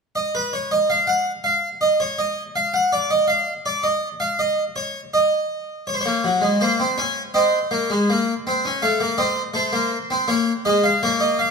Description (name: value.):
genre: classical, baroque-style 3-part fugue for harpsichord.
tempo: 81 BPM.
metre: 4/4.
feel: straight.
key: unclear.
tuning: A4 = 435 Hz.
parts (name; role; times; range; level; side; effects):
harpsichord; solo; 0.2-11.5 s; Gb3 to Gb5; -18 LUFS; equal; none.
room: moderate recital hall reverb, RT60 1.7 s.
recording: minimal, uncompressed stereo recording.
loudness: -18 LUFS.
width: side -5 dB against mid.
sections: 0.0-11.5 A section.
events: none.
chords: 0.0 N.C.; 5.9 Bbm; 7.3 Abadd9; 8.8 Adim; 10.3 Bbm.